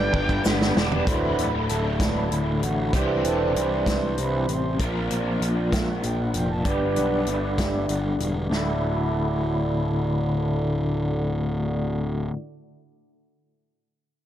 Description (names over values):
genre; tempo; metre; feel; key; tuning
psychedelic rock; 64 BPM (dotted quarters); 6/8; straight; D mixolydian; A4 = 440 Hz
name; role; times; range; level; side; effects
pedal harmonium; sustained chords; 0.0-12.3 s; E3 to A5; -28 LUFS; right 3 dB; low-pass filter
overdriven electric guitar; riff; 0.0-12.4 s; D2 to C5; -26 LUFS; left 2 dB; rotary speaker, low-pass filter
fuzz picked electric bass; bass; 0.0-12.3 s; D1 to C2; -28 LUFS; equal; overdrive
vintage drum kit; drums; 0.1-8.7 s; hi-hat, kick drum, snare drum, toms; -26 LUFS; equal; none
tube shaker; percussion; 0.3-0.6 s; none; -37 LUFS; left 11 dB; none
room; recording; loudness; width
moderate echo chamber reverb, RT60 2.1 s; none; -22 LUFS; side -11 dB against mid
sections
0.0-1.1 A section; 1.1-8.5 B section; 8.5-12.2 C section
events
drum fill 0.0-1.1; harmonium solo 1.1-8.5; filter sweep 1.1-8.5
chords
0.0 G; 1.1 Dadd9; 2.9 Cadd9; 4.8 Bbadd9; 6.6 G; 8.5 Dadd9